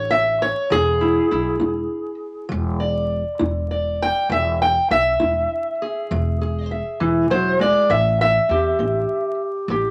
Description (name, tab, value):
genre	acoustic country blues, solo or duo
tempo	67 BPM (dotted quarters)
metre	12/8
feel	straight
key	unclear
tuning	A4 = 440 Hz
part	fingerpicked steel-string acoustic guitar	melody	0.0-9.9 s	A2 to G5	-21 LUFS	equal	none
part	upright bass	bass	0.0-9.9 s	E1 to E2	-27 LUFS	equal	none
room	moderate studio reverb, RT60 0.5 s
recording	vinyl crackle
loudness	-20 LUFS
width	mono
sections	0.0-9.9 A section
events	steel-string acoustic guitar solo 0.0-9.9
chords	0.0 A7; 0.7 E7; 7.9 A7